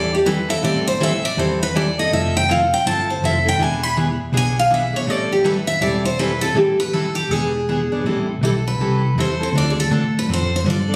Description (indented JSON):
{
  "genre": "acoustic string swing (jazz manouche)",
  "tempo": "162 BPM",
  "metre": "4/4",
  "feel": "swing 62% on 8ths",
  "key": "A minor",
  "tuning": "A4 = 440 Hz",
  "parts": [
    { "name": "picked steel-string acoustic guitar", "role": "melody", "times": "0.0-11.0 s", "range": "G4 to B5", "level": "-22 LUFS", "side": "equal", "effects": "none" },
    { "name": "picked steel-string acoustic guitar", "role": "accompaniment", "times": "0.0-11.0 s", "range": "D3 to A4", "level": "-24 LUFS", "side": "equal", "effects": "none" },
    { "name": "hollow-body short-scale fingered electric bass", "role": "bass", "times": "0.0-11.0 s", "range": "E1 to A2", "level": "-25 LUFS", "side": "equal", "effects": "none" }
  ],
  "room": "light reverb",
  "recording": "recorded on a phone in the room, studio reverb",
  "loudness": "-19 LUFS",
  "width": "mono",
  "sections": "0.0-8.0 A section; 8.0-11.0 B section",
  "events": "steel-string acoustic guitar solo 0.0-8.0",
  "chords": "0.0 Am7; 2.1 Fmaj7; 3.6 E7; 5.1 Am7; 7.3 E7; 8.0 Am9; 9.5 Dm7"
}